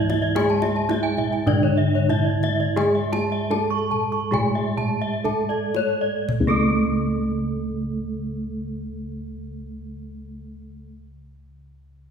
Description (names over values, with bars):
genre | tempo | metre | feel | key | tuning
Balinese gamelan | 54-116 BPM | 4/4 | straight | unclear | A4 = 440 Hz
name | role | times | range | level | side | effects
gamelan-type bronze metallophone | melody | 0.0-11.0 s | A3-20c to A4-20c | -26 LUFS | right 4 dB | none
gamelan-type bronze metallophone | accompaniment | 0.0-10.9 s | D3+20c to A3-20c | -29 LUFS | left 1 dB | none
gamelan-type bronze metallophone | arpeggios | 0.0-10.9 s | A4-20c to C#6 | -30 LUFS | right 4 dB | none
gamelan-type bossed gongs | bass | 0.0-10.9 s | C#2 to G#4-30c | -26 LUFS | left 1 dB | none
gamelan-type bronze metallophone | arpeggios | 0.1-11.0 s | A4-20c to A5-20c | -27 LUFS | left 4 dB | slapback echo
kendang | percussion | 0.1-6.8 s | none | -30 LUFS | left 1 dB | none
room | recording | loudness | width
wet recital hall reverb, RT60 1.5 s | heard from further back in the room | -20 LUFS | side -7 dB against mid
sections
0.0-6.3 A section; 6.3-10.7 B section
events
slowing down 0.4-6.3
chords
none